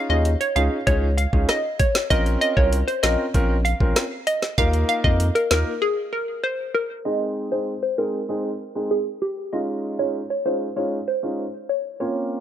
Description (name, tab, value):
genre	dancehall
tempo	97 BPM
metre	4/4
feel	straight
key	Ab major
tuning	A4 = 440 Hz
part	hollow square pluck	melody	0.0-12.1 s	G4 to F5	-24 LUFS	equal	chorus, phaser, tape echo
part	warm concert grand piano	accompaniment	0.0-12.4 s	Ab3 to Bb4	-26 LUFS	equal	none
part	saturated sub bass	bass	0.1-5.6 s	Bb1 to F2	-21 LUFS	equal	none
part	island pop drum kit	drums	0.3-5.7 s	hi-hat, kick drum, rim click, snare drum	-22 LUFS	equal	none
room	little or no reverb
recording	dry, gritty hardware recording, low-pass filter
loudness	-20 LUFS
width	side -10 dB against mid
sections	0.0-7.1 A section; 7.1-12.4 B section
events	break 5.8-7.1; filter sweep 7.1-12.4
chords	0.0 Dbadd9; 2.1 Bbmadd9; 4.6 Ebsus2; 7.1 Ab; 9.5 Dbadd9